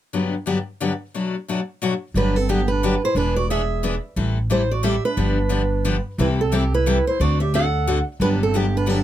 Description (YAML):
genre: acoustic string swing (jazz manouche)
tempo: 178 BPM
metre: 3/4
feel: swing 60% on 8ths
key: G major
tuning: A4 = 440 Hz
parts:
  - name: picked steel-string acoustic guitar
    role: accompaniment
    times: 0.1-9.0 s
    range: G2 to A4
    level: -23 LUFS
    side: left 4 dB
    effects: none
  - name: upright bass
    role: bass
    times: 2.1-9.0 s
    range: E1 to D2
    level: -22 LUFS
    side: equal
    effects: none
  - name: picked steel-string acoustic guitar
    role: melody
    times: 2.2-9.0 s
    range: G4 to F#5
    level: -23 LUFS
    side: right 2 dB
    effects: none
  - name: breathy clarinet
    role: second line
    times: 2.2-9.0 s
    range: B3 to A4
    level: -28 LUFS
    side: right 8 dB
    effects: none
room: little or no reverb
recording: close, detailed microphones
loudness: -19 LUFS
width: side -12 dB against mid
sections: 0.1-2.1 A section; 2.1-9.0 B section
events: none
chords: 0.1 Gmaj7; 1.1 Bm7; 2.1 Gmaj7; 3.2 E7; 4.2 Am7; 5.2 G7; 6.2 C6; 7.2 D7; 8.2 Gmaj7